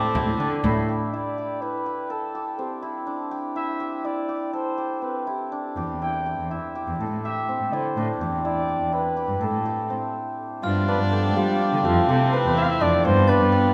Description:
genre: contemporary instrumental, chamber music in an uneven meter.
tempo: 247 BPM (eighths).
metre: 5/8.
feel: straight.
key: A minor.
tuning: A4 = 439 Hz.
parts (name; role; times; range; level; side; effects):
mellow flugelhorn; melody; 0.0-13.7 s; E4 to G5; -30 LUFS; equal; none.
warm viola; second line; 0.0-0.6, 10.6-13.7 s; B3 to D4; -31 LUFS; equal; none.
hammered dulcimer; arpeggios; 0.0-13.7 s; C4 to A4; -28 LUFS; equal; none.
warm cello; bass; 0.0-0.8, 5.8-13.7 s; E2 to G3; -28 LUFS; equal; none.
frame drum; percussion; 0.2-0.9 s; none; -33 LUFS; equal; none.
hand-pumped harmonium; sustained chords; 10.6-13.7 s; F3 to G4; -33 LUFS; equal; none.
glockenspiel with brass mallets; texture; 10.6-13.7 s; F6 to A6; -42 LUFS; equal; none.
room: wet recital hall reverb, RT60 1.6 s.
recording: none.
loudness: -24 LUFS.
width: mono.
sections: 0.9-10.6 A section; 10.6-13.7 B section.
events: stop 10.0-10.6.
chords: 0.0 Am7; 0.9 Em7; 2.1 Am7; 5.8 Em; 7.0 Am7; 8.2 Em7; 9.4 Am7; 10.6 G7; 11.9 Fmaj7; 13.0 G7.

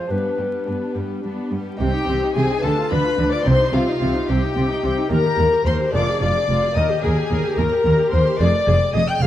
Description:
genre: classical, baroque-style concerto movement with solo episodes.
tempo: 73 BPM (dotted quarters).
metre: 6/8.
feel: straight.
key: C minor.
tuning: A4 = 440 Hz.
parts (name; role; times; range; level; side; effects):
clear chamber violin section; melody; 0.0-9.3 s; G4 to G6; -30 LUFS; left 5 dB; none.
tenor recorder; melody; 0.0-9.3 s; F4 to G5; -23 LUFS; left 2 dB; none.
rich chamber violin section; second line; 0.0-9.3 s; B3 to G5; -25 LUFS; left 4 dB; none.
lute; accompaniment; 0.0-9.3 s; Eb2 to C5; -30 LUFS; left 2 dB; none.
rich chamber viola section; accompaniment; 0.0-9.3 s; F3 to Bb4; -27 LUFS; right 1 dB; none.
rich chamber cello section; bass; 0.1-9.3 s; Eb2 to D3; -23 LUFS; right 1 dB; none.
clear chamber double bass section; bass; 1.8-9.3 s; F1 to Eb2; -23 LUFS; right 1 dB; none.
room: moderate concert hall reverb, RT60 2.0 s.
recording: dark, warm production, vinyl crackle.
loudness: -17 LUFS.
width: side -12 dB against mid.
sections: 0.0-1.8 A section; 1.8-9.3 B section.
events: none.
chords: 0.1 G; 1.8 Cm; 2.6 Bdim/D; 3.5 Cm; 5.1 Eb; 5.9 Ddim/F; 6.8 Eb; 8.4 Fm.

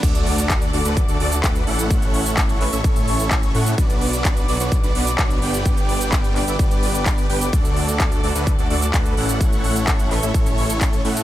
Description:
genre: EDM, festival progressive house.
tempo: 128 BPM.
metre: 4/4.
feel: straight.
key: D major.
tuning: A4 = 440 Hz.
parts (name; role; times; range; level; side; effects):
rich chamber string section; sustained chords; 0.0-11.2 s; A4 to D6; -28 LUFS; equal; sidechain pumping.
dense compressed supersaw; riff; 0.0-11.2 s; A3 to G5; -24 LUFS; right 1 dB; sidechain pumping, tape echo.
detuned saw bass; bass; 0.0-11.2 s; G1 to A2; -24 LUFS; equal; sidechain pumping, high-pass filter.
big-room dance drum kit; drums; 0.0-11.2 s; crash cymbal, handclaps, hi-hat, shaker; -26 LUFS; equal; none.
electronic kick drum; drums; 0.0-10.9 s; none; -19 LUFS; equal; none.
swell and sub drop; sound effects; 0.0-1.9 s; none; -30 LUFS; equal; none.
room: little or no reverb.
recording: none.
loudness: -16 LUFS.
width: side -14 dB against mid.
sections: 0.0-11.2 A section.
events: drop 0.0-11.2; impact 0.0-1.9.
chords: 0.0 D; 1.9 A; 3.8 Bm; 5.7 G; 7.5 D; 9.4 A.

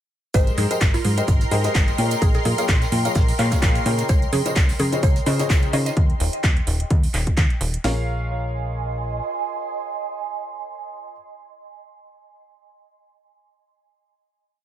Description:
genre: piano house.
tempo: 128 BPM.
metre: 4/4.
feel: swing 56% on 16ths.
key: Bb dorian.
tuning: A4 = 440 Hz.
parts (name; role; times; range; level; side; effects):
mallet-like synth pluck; melody; 0.3-5.9 s; F4 to Eb5; -30 LUFS; equal; wide subtle chorus, analog delay.
analog string pad; sustained chords; 0.3-6.0 s; Bb4 to C6; -30 LUFS; right 1 dB; ensemble chorus, sidechain pumping.
clear upright piano; riff; 0.3-11.1 s; Db3 to G5; -28 LUFS; left 2 dB; sidechain pumping, analog delay.
plucky analog bass; bass; 0.3-9.2 s; Eb1 to Db3; -23 LUFS; equal; sidechain pumping.
house drum kit; drums; 0.3-8.0 s; hi-hat, kick drum, snare drum; -19 LUFS; equal; none.
house drum kit; drums; 0.3-7.8 s; handclaps, hi-hat; -27 LUFS; right 1 dB; none.
warm soul drum kit; drums; 0.3-6.0 s; hi-hat, shaker, snare drum; -38 LUFS; equal; none.
tambourine and congas; percussion; 0.3-5.9 s; none; -34 LUFS; right 4 dB; analog delay.
ethereal airy pad; texture; 1.2-11.3 s; Eb5 to C6; -31 LUFS; right 2 dB; ensemble chorus, built-in reverb, sidechain pumping.
room: light reverb, small room ambience.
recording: echo-heavy mix.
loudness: -18 LUFS.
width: side -12 dB against mid.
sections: 0.3-7.8 drop; 7.8-11.6 final chord.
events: drop 0.3-7.8.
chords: 0.3 Abmaj9; 2.0 Bbm7; 4.1 Dbmaj9; 6.0 N.C.; 7.8 Bbm7.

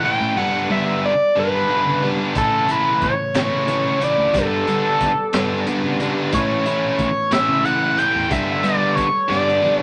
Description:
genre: psychedelic rock.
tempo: 60 BPM (dotted quarters).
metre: 6/8.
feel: straight.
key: G lydian.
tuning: A4 = 439 Hz.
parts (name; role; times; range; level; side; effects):
overdriven synth lead; melody; 0.0-9.8 s; A4 to G5; -21 LUFS; equal; distortion.
combo organ; sustained chords; 0.0-9.8 s; C#3 to D5; -36 LUFS; equal; none.
biting overdriven guitar; riff; 0.0-9.8 s; D3 to E4; -24 LUFS; equal; none.
fingered electric bass; bass; 0.0-9.8 s; D2 to G3; -30 LUFS; equal; none.
crunchy breakbeat drum kit; drums; 2.4-9.8 s; hi-hat, kick drum, snare drum, toms; -28 LUFS; equal; none.
congas; percussion; 2.4-9.8 s; none; -36 LUFS; equal; none.
room: wet studio reverb, RT60 0.6 s.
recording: none.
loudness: -19 LUFS.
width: mono.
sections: 0.0-9.8 A section.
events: drum fill 9.3-9.8.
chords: 0.4 Gadd9; 2.4 Aadd9; 4.3 Gadd9; 6.3 Aadd9; 8.3 Gadd9.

